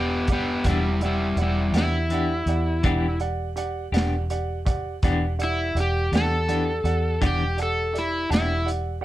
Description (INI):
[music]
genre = slow blues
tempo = 55 BPM (dotted quarters)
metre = 12/8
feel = straight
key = E minor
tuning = A4 = 440 Hz
[part]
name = overdriven slide guitar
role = melody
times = 0.0-8.7 s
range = G3 to A4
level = -25 LUFS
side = left 1 dB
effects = none
[part]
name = clear upright piano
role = accompaniment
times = 0.0-9.0 s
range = G4 to F#5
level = -31 LUFS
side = right 5 dB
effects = none
[part]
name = vintage muted fingered electric bass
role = bass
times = 0.0-9.0 s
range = E1 to E2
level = -26 LUFS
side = equal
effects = none
[part]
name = crunchy breakbeat drum kit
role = drums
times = 0.3-8.8 s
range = hi-hat, kick drum, snare drum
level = -26 LUFS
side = equal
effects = none
[part]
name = semi-hollow electric guitar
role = accompaniment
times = 0.6-8.5 s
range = E3 to G4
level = -28 LUFS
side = left 4 dB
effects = tremolo
[sound]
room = light reverb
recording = dark, warm production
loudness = -21 LUFS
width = side -15 dB against mid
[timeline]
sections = 0.0-9.0 A section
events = electric slide guitar solo 0.0-9.0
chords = 0.0 Em7